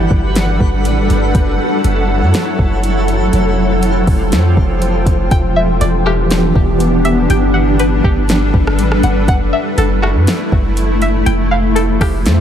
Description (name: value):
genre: hip hop, atmospheric cloud-rap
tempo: 121 BPM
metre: 4/4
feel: half-time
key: unclear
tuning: A4 = 440 Hz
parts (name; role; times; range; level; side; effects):
- granular cloud pad; sustained chords; 0.0-12.4 s; E3 to G5; -15 LUFS; equal; built-in reverb, sidechain pumping
- long sustained 808-style bass; bass; 0.0-12.4 s; E1 to F#2; -15 LUFS; equal; none
- twinkling granular texture; texture; 0.0-5.3 s; F#3 to B4; -26 LUFS; equal; built-in reverb
- smooth R&B drum kit; drums; 0.1-12.4 s; hi-hat, kick drum, rim click, snare drum; -16 LUFS; equal; none
- string-like resonator pluck; arpeggios; 5.3-12.4 s; F#4 to G5; -20 LUFS; left 2 dB; chorus, phaser, low-pass filter, ping-pong delay
room: little or no reverb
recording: none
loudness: -11 LUFS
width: side -9 dB against mid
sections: 0.0-5.3 A section; 5.3-12.4 B section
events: none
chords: 0.0 Gmaj7; 1.3 F#m7; 3.3 Fadd9; 5.3 Em7; 7.3 Gmaj7; 9.3 F#m7; 11.3 Fadd9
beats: 0.35 0.85 | 1.35 1.84 2.34 2.83 | 3.33 3.83 4.32 4.82 | 5.31 5.81 6.30 6.80 | 7.30 7.79 8.29 8.79 | 9.28 9.78 10.27 10.77 | 11.26 11.76 12.26